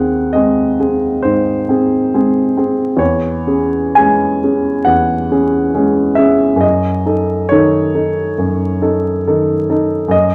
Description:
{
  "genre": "classical, romantic nocturne for solo piano",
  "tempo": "68 BPM",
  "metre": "4/4",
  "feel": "rubato",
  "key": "unclear",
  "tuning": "A4 = 440 Hz",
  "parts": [
    { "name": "warm baby grand piano", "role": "solo", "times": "0.0-10.3 s", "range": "D#2 to G#5", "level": "-14 LUFS", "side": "equal", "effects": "none" }
  ],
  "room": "moderate large studio reverb, RT60 1.1 s",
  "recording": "vinyl crackle",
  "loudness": "-14 LUFS",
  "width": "mono",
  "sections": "0.0-10.3 A section",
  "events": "none",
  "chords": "0.0 G#7/D#; 3.0 C#m/E; 6.6 D#m7b5/F#",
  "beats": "0.34 1.24 2.13 | 3.00 3.97 4.87 5.74 | 6.63 7.51 8.37 9.25 | 10.13"
}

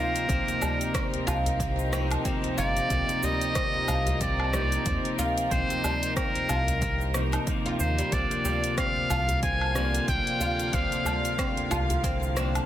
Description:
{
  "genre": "organic downtempo",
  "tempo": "92 BPM",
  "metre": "4/4",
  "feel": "swing 57% on 16ths",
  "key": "C minor",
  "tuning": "A4 = 440 Hz",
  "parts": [
    { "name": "trumpet with metal mute", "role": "melody", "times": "0.0-11.7 s", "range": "Bb4 to Ab5", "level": "-30 LUFS", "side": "equal", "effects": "digital delay" },
    { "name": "clean electric guitar", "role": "accompaniment", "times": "0.0-12.7 s", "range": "C3 to Eb4", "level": "-32 LUFS", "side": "left 1 dB", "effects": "lush chorus, sidechain pumping, digital delay" },
    { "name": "rich chamber string section", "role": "sustained chords", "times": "0.0-12.7 s", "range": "D3 to F5", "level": "-35 LUFS", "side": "equal", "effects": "sidechain pumping" },
    { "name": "oud", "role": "arpeggios", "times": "0.0-12.5 s", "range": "G3 to F4", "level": "-33 LUFS", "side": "equal", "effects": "vintage 12-bit sampler grit, digital delay" },
    { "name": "deep house drum kit", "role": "drums", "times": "0.2-12.7 s", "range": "cabasa, hi-hat, rim click, woodblock", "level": "-34 LUFS", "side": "equal", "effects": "none" },
    { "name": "round analog bass", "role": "bass", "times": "0.3-12.6 s", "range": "G1 to Eb2", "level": "-29 LUFS", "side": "equal", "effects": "none" },
    { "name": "electronic kick drum", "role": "drums", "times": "0.3-12.2 s", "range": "none", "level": "-31 LUFS", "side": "equal", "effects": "none" },
    { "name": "djembe", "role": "percussion", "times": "0.3-12.7 s", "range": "none", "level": "-36 LUFS", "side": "equal", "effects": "none" }
  ],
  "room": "light reverb, small room reverb",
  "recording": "dense, heavily limited modern master",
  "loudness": "-24 LUFS",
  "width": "side -12 dB against mid",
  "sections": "0.0-12.7 A section",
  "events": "none",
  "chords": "0.0 Cm7; 8.1 Bb",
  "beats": "| 0.30 0.95 1.60 2.26 | 2.91 3.56 4.21 4.87 | 5.52 6.17 6.82 7.47 | 8.13 8.78 9.43 10.08 | 10.73 11.39 12.04"
}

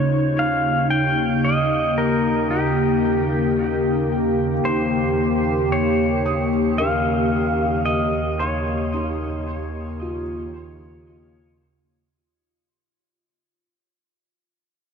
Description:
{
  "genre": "ambient",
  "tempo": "56 BPM",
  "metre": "3/4",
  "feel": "straight",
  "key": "Eb mixolydian",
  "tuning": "A4 = 440 Hz",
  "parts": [
    { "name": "pedal steel guitar", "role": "melody", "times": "0.0-11.6 s", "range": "G4 to G5", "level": "-23 LUFS", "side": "equal", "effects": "shimmer reverb, tape echo" },
    { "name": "warm analog pad", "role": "sustained chords", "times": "0.0-12.2 s", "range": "Db3 to G4", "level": "-21 LUFS", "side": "left 1 dB", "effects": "chorus" },
    { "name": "felt-muted upright piano", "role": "arpeggios", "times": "0.0-13.6 s", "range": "Bb3 to Eb6", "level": "-32 LUFS", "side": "left 1 dB", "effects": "lush chorus, shimmer reverb, tape echo" },
    { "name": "warm chamber double bass section", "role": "bass", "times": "0.0-12.1 s", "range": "Eb2", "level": "-28 LUFS", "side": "right 1 dB", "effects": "none" }
  ],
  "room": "wet huge ambient reverb, RT60 8.0 s",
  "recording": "dreamy mix soaked in reverb",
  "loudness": "-18 LUFS",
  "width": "side -6 dB against mid",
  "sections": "0.0-12.2 A section",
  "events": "fade-in on felt piano 0.0-12.2; fade-in on double bass section 0.0-12.2; fade-out 7.9-12.2",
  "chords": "0.0 Eb7",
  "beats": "0.36 1.44 | 2.51 3.58 4.65 | 5.72 6.79 7.87 | 8.94 10.01 11.08"
}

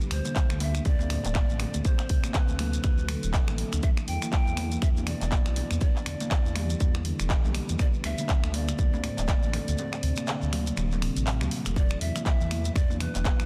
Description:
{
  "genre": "afro house",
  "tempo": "121 BPM",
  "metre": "4/4",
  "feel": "swing 58% on 16ths",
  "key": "unclear",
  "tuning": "A4 = 440 Hz",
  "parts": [
    { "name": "handpan", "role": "arpeggios", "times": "0.0-13.4 s", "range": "A2 to D4", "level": "-37 LUFS", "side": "equal", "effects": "sidechain pumping, dub echo" },
    { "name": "shekere", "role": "percussion", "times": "0.0-13.5 s", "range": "none", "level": "-44 LUFS", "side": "equal", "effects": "none" },
    { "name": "breathy bright large pan pipes", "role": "melody", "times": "0.1-13.5 s", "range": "B4 to G5", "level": "-41 LUFS", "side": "equal", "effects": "dub echo" },
    { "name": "dark detuned saw bass", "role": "bass", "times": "0.1-13.5 s", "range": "D1 to E2", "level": "-32 LUFS", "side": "equal", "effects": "sidechain pumping" },
    { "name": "house drum kit", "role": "drums", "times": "0.1-13.5 s", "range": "finger snaps, handclaps, hi-hat", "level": "-37 LUFS", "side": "equal", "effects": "soft clipping on snare" },
    { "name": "congas", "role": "percussion", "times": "0.2-13.4 s", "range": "none", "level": "-40 LUFS", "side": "equal", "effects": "none" },
    { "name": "electronic kick drum", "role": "drums", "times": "0.4-13.4 s", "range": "none", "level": "-27 LUFS", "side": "equal", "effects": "none" }
  ],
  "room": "light reverb, small room ambience",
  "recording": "dense, heavily limited modern master",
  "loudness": "-27 LUFS",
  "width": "mono",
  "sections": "0.0-13.5 A section",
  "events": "kick drops out 9.8-11.8",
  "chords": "0.0 D5; 3.8 E7(no3); 7.8 D5; 11.8 E7(no3)",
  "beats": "0.36 0.86 1.35 | 1.85 2.34 2.84 3.33 | 3.83 4.33 4.82 5.32 | 5.82 6.31 6.81 7.30 | 7.80 8.29 8.79 9.29 | 9.78 10.28 10.77 11.27 | 11.77 12.26 12.76 13.25"
}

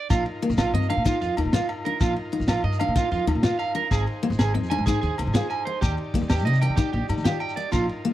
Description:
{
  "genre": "highlife guitar band",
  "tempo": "126 BPM (dotted quarters)",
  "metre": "12/8",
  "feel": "straight",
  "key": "Bb mixolydian",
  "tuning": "A4 = 440 Hz",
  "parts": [
    { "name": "electric guitar at the edge of break-up", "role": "arpeggios", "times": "0.0-7.8 s", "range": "F4 to Ab5", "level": "-27 LUFS", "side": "right 5 dB", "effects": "tape echo" },
    { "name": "combo organ", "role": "sustained chords", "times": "0.1-8.1 s", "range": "Eb4 to D5", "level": "-36 LUFS", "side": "left 1 dB", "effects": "spring reverb" },
    { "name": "upright bass", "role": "bass", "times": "0.1-7.9 s", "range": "Ab1 to Eb3", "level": "-25 LUFS", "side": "equal", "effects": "none" },
    { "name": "crunchy breakbeat drum kit", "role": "drums", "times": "0.1-8.1 s", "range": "kick drum, ride cymbal, snare drum", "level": "-24 LUFS", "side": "equal", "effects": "none" },
    { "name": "agogo bells", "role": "percussion", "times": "0.1-7.9 s", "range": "none", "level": "-36 LUFS", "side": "left 4 dB", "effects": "none" },
    { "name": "shekere", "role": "percussion", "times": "0.1-7.8 s", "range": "none", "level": "-30 LUFS", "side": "left 2 dB", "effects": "none" },
    { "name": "picked steel-string acoustic guitar", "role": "accompaniment", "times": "0.4-8.1 s", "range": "Bb3 to F4", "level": "-28 LUFS", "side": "left 5 dB", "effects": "none" }
  ],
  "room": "little or no reverb",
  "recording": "dry, close 1970s-style studio recording",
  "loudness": "-21 LUFS",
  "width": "side -14 dB against mid",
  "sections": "0.1-8.1 A section",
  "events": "none",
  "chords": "0.1 Bbsus4; 3.9 Ab; 5.8 Bbsus4",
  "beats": "| 0.10 0.58 1.05 1.53 | 2.01 2.48 2.96 3.44 | 3.91 4.39 4.87 5.34 | 5.82 6.30 6.78 7.25 | 7.73"
}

